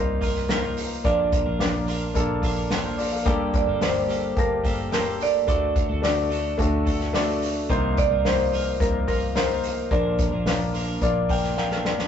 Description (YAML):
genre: piano-driven pop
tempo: 108 BPM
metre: 4/4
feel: straight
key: Bb major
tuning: A4 = 441 Hz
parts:
  - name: marimba with medium mallets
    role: melody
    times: 0.0-10.7 s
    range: Bb4 to D5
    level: -26 LUFS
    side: right 2 dB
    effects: tape echo
  - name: clear baby grand piano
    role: accompaniment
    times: 0.0-12.1 s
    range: G2 to A5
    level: -26 LUFS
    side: left 2 dB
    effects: none
  - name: twelve-string electric guitar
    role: riff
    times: 0.0-12.1 s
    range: G2 to Bb4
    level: -32 LUFS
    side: right 3 dB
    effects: spring reverb
  - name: vintage muted fingered electric bass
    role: bass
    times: 0.0-12.1 s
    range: G1 to D2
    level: -29 LUFS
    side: equal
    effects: none
  - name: unplugged drum kit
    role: drums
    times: 0.2-12.1 s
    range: hi-hat, kick drum, snare drum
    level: -26 LUFS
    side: equal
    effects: none
room: light reverb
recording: rough rehearsal-room recording, nothing above 7.9 kHz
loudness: -21 LUFS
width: side -8 dB against mid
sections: 0.0-12.1 A section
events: grand piano fill 11.0-12.1; drum fill 11.6-12.1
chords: 0.0 F7sus4/C; 1.0 Bb; 3.3 Gmadd9; 5.5 D; 7.7 F7sus4/C; 9.9 Bb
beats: 0.49 | 1.04 1.60 2.15 2.71 | 3.26 3.81 4.37 4.92 | 5.48 6.03 6.59 7.14 | 7.69 8.25 8.80 9.36 | 9.91 10.46 11.02 11.57